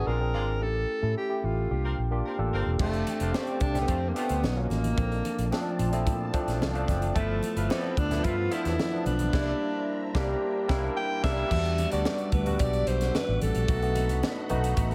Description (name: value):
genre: polished 1980s jazz-funk pop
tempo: 110 BPM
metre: 4/4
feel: straight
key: E minor from 11.5 s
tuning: A4 = 441 Hz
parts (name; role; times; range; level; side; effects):
- breathy alto saxophone; melody; 0.0-14.5 s; A3 to G5; -34 LUFS; equal; none
- barky tine electric piano; accompaniment; 0.0-14.9 s; F3 to C6; -34 LUFS; equal; overdrive, analog chorus
- fingered electric bass with an envelope filter; bass; 0.0-14.9 s; E1 to Bb2; -31 LUFS; equal; none
- warm horn section; second line; 0.1-8.7 s; F3 to F5; -41 LUFS; equal; none
- soft string machine; sustained chords; 2.8-14.9 s; F3 to D6; -41 LUFS; equal; ensemble chorus
- crisp fusion drum kit; drums; 2.8-14.9 s; crash cymbal, hi-hat, kick drum, snare drum; -34 LUFS; equal; none
- congas; percussion; 2.8-14.6 s; none; -42 LUFS; equal; none
room: studio reverb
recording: none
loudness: -28 LUFS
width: mono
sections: 0.0-2.8 A section; 2.8-11.5 B section; 11.5-14.9 C section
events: tine electric piano fill 5.5-7.2; band accent 9.3-11.5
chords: 0.1 Bb9; 0.6 A7; 1.7 C7sus4; 2.8 F6; 4.4 Bmaj7; 5.0 Bbmaj7; 7.2 G13; 9.3 C9; 11.5 Em9; 13.7 B7